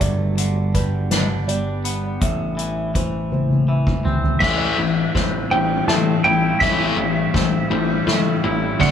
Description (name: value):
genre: post-rock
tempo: 55 BPM (dotted quarters)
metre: 6/8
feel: straight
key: A minor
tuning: A4 = 439 Hz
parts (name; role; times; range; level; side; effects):
- ethereal airy pad; sustained chords; 0.0-8.9 s; C3 to G4; -33 LUFS; right 1 dB; none
- felt-muted upright piano; arpeggios; 0.0-8.9 s; B4 to E5; -31 LUFS; right 7 dB; analog delay
- twangy electric guitar; arpeggios; 0.0-8.9 s; G2 to E4; -28 LUFS; equal; analog delay
- picked electric bass; bass; 0.0-8.9 s; G1 to A2; -23 LUFS; equal; none
- soft-mallet drum kit; drums; 0.0-8.9 s; crash cymbal, hi-hat, kick drum, ride cymbal, snare drum, toms; -22 LUFS; left 1 dB; none
- clean lap steel guitar; melody; 4.4-8.9 s; E5 to A5; -22 LUFS; right 2 dB; analog delay
- distorted electric guitar; riff; 4.4-8.9 s; A2 to D4; -22 LUFS; left 8 dB; overdrive
- overdriven semi-hollow guitar; riff; 8.8-8.9 s; D3 to C4; -17 LUFS; right 10 dB; none
room: light reverb, small room reverb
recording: none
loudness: -17 LUFS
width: side -8 dB against mid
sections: 0.0-4.4 A section; 4.4-8.9 B section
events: drum fill 3.3-4.4, 4.4-8.9; build-up 4.4-8.9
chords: 0.0 G; 2.2 Am; 4.4 Am7